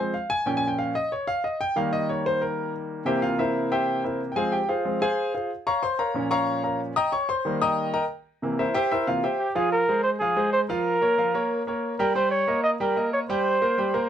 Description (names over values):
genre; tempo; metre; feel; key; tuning
latin; 185 BPM; 4/4; straight; F minor; A4 = 440 Hz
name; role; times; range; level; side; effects
clear concert grand piano; accompaniment; 0.0-14.1 s; Bb2 to Eb6; -24 LUFS; equal; none
clear flugelhorn; melody; 9.4-14.1 s; G4 to Eb5; -23 LUFS; right 1 dB; none
room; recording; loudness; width
light reverb; close, detailed microphones; -22 LUFS; side -9 dB against mid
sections
0.0-9.6 A section; 9.6-14.1 B section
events
grand piano solo 0.0-9.6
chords
0.5 Bbm; 1.8 Eb; 3.1 C7; 4.4 Fm; 5.7 Bbm; 7.0 Eb; 8.3 C7; 9.6 Fm; 10.9 Bbm; 12.1 Eb; 13.4 C5